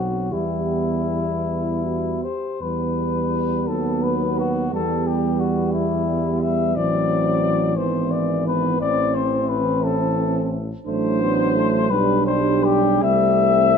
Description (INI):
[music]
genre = classical, hymn-like piece for brass band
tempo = 50-60 BPM (dotted quarters)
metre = 6/8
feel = rubato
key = E minor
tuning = A4 = 441 Hz
[part]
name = warm flugelhorn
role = melody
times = 0.0-13.8 s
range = E4 to E5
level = -22 LUFS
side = left 8 dB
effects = none
[part]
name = mellow French horn section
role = second line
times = 0.0-13.8 s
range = B3 to D4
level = -26 LUFS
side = right 10 dB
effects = none
[part]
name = clear trombone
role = accompaniment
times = 0.0-13.8 s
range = E3 to C4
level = -26 LUFS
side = right 5 dB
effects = none
[part]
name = warm euphonium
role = accompaniment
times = 0.0-13.8 s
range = E3 to G4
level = -28 LUFS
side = left 3 dB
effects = none
[part]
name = warm tuba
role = bass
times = 0.0-13.8 s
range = G#1 to E2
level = -25 LUFS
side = right 1 dB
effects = none
[sound]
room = light reverb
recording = close, detailed microphones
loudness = -18 LUFS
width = side -6 dB against mid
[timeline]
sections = 0.0-2.6 A section; 2.6-13.8 B section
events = none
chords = 0.3 Em; 3.7 B/D#; 4.7 Em; 6.8 Am; 7.8 E/G#; 8.8 Am; 10.9 D7/A; 11.9 G/B; 13.0 Am/C